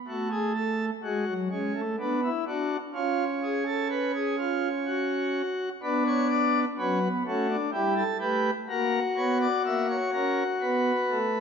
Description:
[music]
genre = classical, baroque-style 4-part fugue for pipe organ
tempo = 63 BPM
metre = 3/4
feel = straight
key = B minor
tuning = A4 = 440 Hz
[part]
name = pipe organ, principal chorus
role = solo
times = 0.1-11.4 s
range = F#3 to E5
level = -25 LUFS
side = equal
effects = none
[sound]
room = wet recital hall reverb, RT60 1.5 s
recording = nothing above 7.5 kHz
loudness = -25 LUFS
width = side -6 dB against mid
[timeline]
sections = 0.0-11.4 A section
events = none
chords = 0.1 F#m/A; 2.0 Bm; 3.0 C#7; 4.9 F#5/C#; 5.8 Bm; 7.7 Em/G; 8.7 F#7/A#; 10.6 B5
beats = | 0.08 1.04 2.00 | 2.95 3.91 4.87 | 5.83 6.78 7.73 | 8.69 9.65 10.62

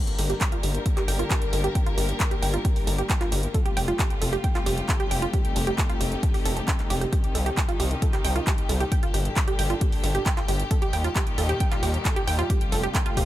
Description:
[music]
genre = uplifting trance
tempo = 134 BPM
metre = 4/4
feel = straight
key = G minor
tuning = A4 = 441 Hz
[part]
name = warm studio string section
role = sustained chords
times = 0.0-13.3 s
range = Bb2 to Bb4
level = -31 LUFS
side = left 2 dB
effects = sidechain pumping
[part]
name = techno drum kit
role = drums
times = 0.1-13.3 s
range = handclaps, hi-hat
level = -31 LUFS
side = right 1 dB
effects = sidechain pumping on hats, sidechain pumping on cymbals
[part]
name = wide unison pluck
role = arpeggios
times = 0.2-13.2 s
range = D4 to G5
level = -30 LUFS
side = right 4 dB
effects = sidechain pumping, digital delay
[part]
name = gritty driven synth bass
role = bass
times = 0.2-13.3 s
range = F1 to Eb2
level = -26 LUFS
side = equal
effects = sidechain pumping
[part]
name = electronic kick drum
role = drums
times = 0.4-13.3 s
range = none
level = -25 LUFS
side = equal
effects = none
[sound]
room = little or no reverb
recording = none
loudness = -22 LUFS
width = side -14 dB against mid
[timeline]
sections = 0.0-13.3 A section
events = filter sweep on synth pluck 0.0-13.3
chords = 0.0 Gm; 3.5 Fadd9; 7.1 Cm; 8.9 Gm; 10.7 Eb; 12.5 Fadd9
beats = 0.41 0.86 1.30 | 1.75 2.20 2.65 3.10 | 3.54 3.99 4.44 4.89 | 5.33 5.78 6.23 6.68 | 7.13 7.57 8.02 8.47 | 8.92 9.37 9.81 10.26 | 10.71 11.16 11.60 12.05 | 12.50 12.95

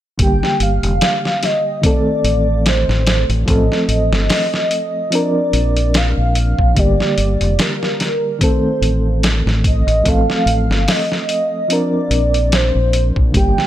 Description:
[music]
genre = trip hop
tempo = 73 BPM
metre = 4/4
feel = swing 56% on 16ths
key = G minor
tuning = A4 = 440 Hz
[part]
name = pure breathy sine lead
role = melody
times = 0.2-13.7 s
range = Bb4 to G5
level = -20 LUFS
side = equal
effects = analog chorus
[part]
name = reed electric piano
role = accompaniment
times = 0.2-13.7 s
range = D3 to Bb4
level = -20 LUFS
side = right 1 dB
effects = fast tremolo, harmonic tremolo, vintage 12-bit sampler grit
[part]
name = deep dub fingered electric bass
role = bass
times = 0.2-13.5 s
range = F1 to Bb1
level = -16 LUFS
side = equal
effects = tube saturation
[part]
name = boom bap sampler-style drum kit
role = drums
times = 0.2-13.7 s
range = hi-hat, kick drum, snare drum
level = -18 LUFS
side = equal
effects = vintage 12-bit sampler grit
[sound]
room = digital ambience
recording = none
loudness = -13 LUFS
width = side -12 dB against mid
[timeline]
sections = 0.2-13.7 A section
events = none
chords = 0.2 Gm; 1.8 Adim; 3.5 F; 5.1 Bbadd9; 6.8 Gm; 8.4 Adim; 10.1 F; 11.7 Bbadd9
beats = | 0.19 1.01 1.83 2.66 | 3.48 4.30 5.12 5.94 | 6.76 7.59 8.41 9.23 | 10.05 10.88 11.70 12.52 | 13.34

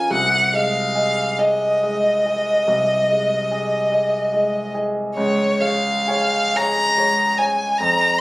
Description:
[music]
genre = classical, romantic duo for violin and grand piano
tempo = 41-50 BPM (dotted quarters)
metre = 12/8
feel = rubato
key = unclear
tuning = A4 = 440 Hz
[part]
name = clear violin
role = melody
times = 0.0-8.2 s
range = Db5 to Bb5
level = -18 LUFS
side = equal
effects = none
[part]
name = clear concert grand piano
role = accompaniment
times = 0.0-8.2 s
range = C2 to Eb5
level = -21 LUFS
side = equal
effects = none
[sound]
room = light reverb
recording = recorded on a phone in the room, club reverb, compression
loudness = -16 LUFS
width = side -20 dB against mid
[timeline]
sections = 0.0-8.2 A section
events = none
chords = 0.1 Ab/C; 5.2 Db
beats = | 0.11 1.39 2.69 3.93 | 5.17 6.55 7.79

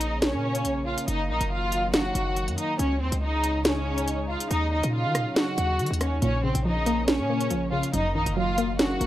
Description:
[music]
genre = hip hop, drill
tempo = 140 BPM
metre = 4/4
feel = half-time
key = Bb minor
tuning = A4 = 440 Hz
[part]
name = rich studio violin section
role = melody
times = 0.0-9.1 s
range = C4 to Gb5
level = -28 LUFS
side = equal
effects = low-pass filter
[part]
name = dark analog pad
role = sustained chords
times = 0.0-9.1 s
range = Db3 to Eb4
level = -33 LUFS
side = equal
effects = chorus
[part]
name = hard-hitting 808-style bass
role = bass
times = 0.0-9.1 s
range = Gb1 to Eb3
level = -29 LUFS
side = equal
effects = none
[part]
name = drill drum kit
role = drums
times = 0.0-9.1 s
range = hi-hat, rim click, snare drum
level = -26 LUFS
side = equal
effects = none
[part]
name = soft round pluck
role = accompaniment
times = 6.2-9.1 s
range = Gb2 to Db4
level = -27 LUFS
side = equal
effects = chorus, low-pass filter
[sound]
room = digital ambience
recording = dry, gritty hardware recording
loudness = -23 LUFS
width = side -14 dB against mid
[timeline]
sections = 0.0-9.1 A section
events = none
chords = 0.0 Bbm; 1.1 Gb6; 2.8 Dbsus2; 4.5 Ebm7; 6.2 Bbmadd9; 7.9 Gb6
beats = 0.22 0.65 | 1.08 1.51 1.94 2.37 | 2.79 3.22 3.65 4.08 | 4.51 4.94 5.37 5.79 | 6.22 6.65 7.08 7.51 | 7.94 8.37 8.79

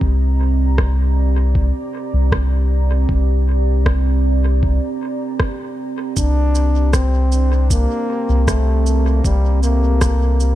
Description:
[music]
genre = ambient dub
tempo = 78 BPM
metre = 4/4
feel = straight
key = unclear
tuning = A4 = 441 Hz
[part]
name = deep dark ambient pad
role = sustained chords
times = 0.0-10.6 s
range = C4 to Bb5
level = -24 LUFS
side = right 3 dB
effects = chorus, built-in reverb
[part]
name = soft dub sub bass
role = bass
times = 0.0-10.6 s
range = C2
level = -15 LUFS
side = equal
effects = tube saturation
[part]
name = electronic kick drum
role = drums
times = 0.0-10.2 s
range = none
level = -19 LUFS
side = equal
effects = studio reverb
[part]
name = electronic rim click and cabasa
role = drums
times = 0.8-10.6 s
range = none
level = -26 LUFS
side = right 1 dB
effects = studio reverb, dub echo
[part]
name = warm trombone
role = melody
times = 6.2-10.6 s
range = G3 to D4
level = -22 LUFS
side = left 1 dB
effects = dub echo
[sound]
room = little or no reverb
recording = echo-heavy mix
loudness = -14 LUFS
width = side -14 dB against mid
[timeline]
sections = 0.0-10.6 A section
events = none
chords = 0.0 C7(no3)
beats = | 0.02 0.79 1.55 2.32 | 3.09 3.86 4.63 5.40 | 6.17 6.94 7.71 8.48 | 9.25 10.02

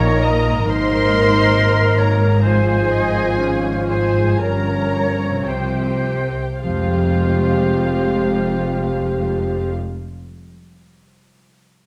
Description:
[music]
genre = cinematic, emotional film score for orchestra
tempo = 51-71 BPM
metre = 4/4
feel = rubato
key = F minor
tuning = A4 = 440 Hz
[part]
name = muted studio violin section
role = melody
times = 0.0-9.7 s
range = F5 to C6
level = -29 LUFS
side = equal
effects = none
[part]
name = concert flute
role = second line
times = 0.0-9.7 s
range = C5 to Eb5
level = -27 LUFS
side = equal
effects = none
[part]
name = muted studio violin section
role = second line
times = 0.0-9.7 s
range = F4 to C5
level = -30 LUFS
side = equal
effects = none
[part]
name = muted studio viola section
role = accompaniment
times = 0.0-9.7 s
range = Ab3 to Eb5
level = -26 LUFS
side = equal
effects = none
[part]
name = mellow French horn section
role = sustained chords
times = 0.0-9.7 s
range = F3 to G4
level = -26 LUFS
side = equal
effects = none
[part]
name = concert harp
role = arpeggios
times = 0.0-10.5 s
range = G2 to C5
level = -29 LUFS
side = equal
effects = none
[part]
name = muted studio cello section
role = bass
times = 0.0-9.7 s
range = F2 to C3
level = -24 LUFS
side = equal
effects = none
[part]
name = muted symphonic double bass section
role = bass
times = 0.0-9.7 s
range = F1 to C2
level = -26 LUFS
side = equal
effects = none
[sound]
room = light reverb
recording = close, detailed microphones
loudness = -18 LUFS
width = mono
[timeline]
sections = 0.0-6.6 A section; 6.6-11.1 B section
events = slowing down 0.0-6.6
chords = 0.0 Ebsus2/Bb; 0.7 Abadd9; 2.4 Fm/Ab; 4.4 Gdim; 5.5 Csus4; 6.6 Fmadd9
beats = 0.67 1.54 | 2.44 3.38 4.40 5.48 | 6.63 7.77 8.89 10.00

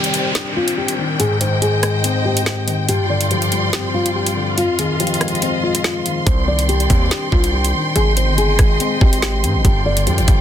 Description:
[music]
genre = hip hop, drill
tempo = 142 BPM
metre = 4/4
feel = half-time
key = C minor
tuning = A4 = 440 Hz
[part]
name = nylon-string guitar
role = melody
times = 0.0-10.4 s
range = F4 to D5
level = -22 LUFS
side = left 1 dB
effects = low-pass filter, digital delay
[part]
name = dark grand piano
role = accompaniment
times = 0.0-10.4 s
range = F2 to D4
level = -21 LUFS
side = left 3 dB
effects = low-pass filter
[part]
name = warm symphonic string section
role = sustained chords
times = 0.0-10.4 s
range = Eb3 to C6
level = -22 LUFS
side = right 1 dB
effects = none
[part]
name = drill drum kit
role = drums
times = 0.0-10.4 s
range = hi-hat, kick drum, rim click, snare drum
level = -18 LUFS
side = equal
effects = soft clipping on snare
[part]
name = downlifter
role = sound effects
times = 0.0-2.9 s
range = none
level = -25 LUFS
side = equal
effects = none
[part]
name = distorted 808-style bass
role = bass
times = 6.3-10.4 s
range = G1 to Ab2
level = -18 LUFS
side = equal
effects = distortion
[sound]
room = little or no reverb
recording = dense, heavily limited modern master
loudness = -14 LUFS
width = side -10 dB against mid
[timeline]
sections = 0.0-10.4 A section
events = break 0.0-6.3; filter sweep 0.0-10.4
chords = 0.0 Cmadd9; 1.2 Abmaj7; 2.9 G7sus4; 4.6 Fm7; 6.3 Cmadd9; 8.0 Abmaj7; 9.6 G7sus4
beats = 0.35 0.77 | 1.20 1.62 2.04 2.46 | 2.89 3.31 3.73 4.15 | 4.58 5.00 5.42 5.84 | 6.27 6.69 7.11 7.53 | 7.96 8.38 8.80 9.22 | 9.65 10.07

